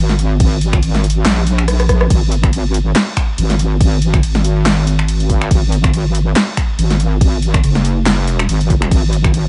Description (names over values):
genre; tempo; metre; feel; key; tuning
deep dubstep; 141 BPM; 4/4; swing 56% on 16ths, half-time; unclear; A4 = 440 Hz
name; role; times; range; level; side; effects
wobble bass; bass; 0.0-9.5 s; F#1 to A#1; -16 LUFS; equal; chorus
deep house drum kit; drums; 0.1-9.4 s; crash cymbal, finger snaps, handclaps, hi-hat, rim click, snare drum; -21 LUFS; equal; overdrive
electronic kick drum; drums; 0.4-9.3 s; none; -17 LUFS; equal; overdrive
room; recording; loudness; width
little or no reverb; vinyl crackle, nothing above 10.5 kHz; -14 LUFS; mono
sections
0.0-2.1 A section; 2.1-9.5 A section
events
drop 0.0-2.1, 2.1-9.5; drum fill 1.7-2.1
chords
none